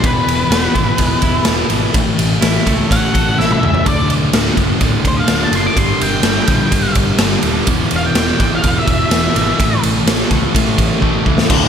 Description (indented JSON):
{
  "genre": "quiet-loud alternative rock",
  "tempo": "126 BPM",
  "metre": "4/4",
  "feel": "straight",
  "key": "unclear",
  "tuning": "A4 = 441 Hz",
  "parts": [
    { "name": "octave-fuzz lead guitar", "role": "melody", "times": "0.0-9.8 s", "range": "B4 to D6", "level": "-20 LUFS", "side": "equal", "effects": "distortion, slapback echo" },
    { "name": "twelve-string electric guitar", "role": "arpeggios", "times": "0.0-3.9 s", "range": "E2 to A4", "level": "-22 LUFS", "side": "right 5 dB", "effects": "slapback echo" },
    { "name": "thick fuzz guitar", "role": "riff", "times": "0.0-11.7 s", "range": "D2 to F#4", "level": "-19 LUFS", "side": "left 9 dB", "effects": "distortion, slapback echo" },
    { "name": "picked electric bass", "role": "bass", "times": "0.0-11.7 s", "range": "D1 to C#2", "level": "-21 LUFS", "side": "right 1 dB", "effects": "none" },
    { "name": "raw garage drum kit", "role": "drums", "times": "0.0-11.6 s", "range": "crash cymbal, kick drum, ride cymbal, snare drum, toms", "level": "-15 LUFS", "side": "right 1 dB", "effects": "none" },
    { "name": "biting overdriven guitar", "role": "riff", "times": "3.9-11.5 s", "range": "D2 to A3", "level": "-21 LUFS", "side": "right 10 dB", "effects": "slapback echo" },
    { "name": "fuzz guitar", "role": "riff", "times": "11.5-11.7 s", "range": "D2 to D3", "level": "-16 LUFS", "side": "right 2 dB", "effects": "distortion" }
  ],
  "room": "moderate lush hall reverb, RT60 1.6 s, small room ambience",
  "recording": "big arena sound",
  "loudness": "-12 LUFS",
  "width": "side -8 dB against mid",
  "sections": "0.0-11.5 A section",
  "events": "lead electric guitar solo 0.0-11.5; drum fill 3.4-3.9, 11.0-11.5",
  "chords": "0.0 E; 2.0 A; 3.9 D; 5.8 G5; 7.7 E; 9.6 A",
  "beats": "| 0.04 0.52 0.99 1.47 | 1.95 2.43 2.91 3.38 | 3.86 4.34 4.82 5.29 | 5.77 6.25 6.72 7.20 | 7.68 8.16 8.63 9.11 | 9.59 10.06 10.54 11.02 | 11.49"
}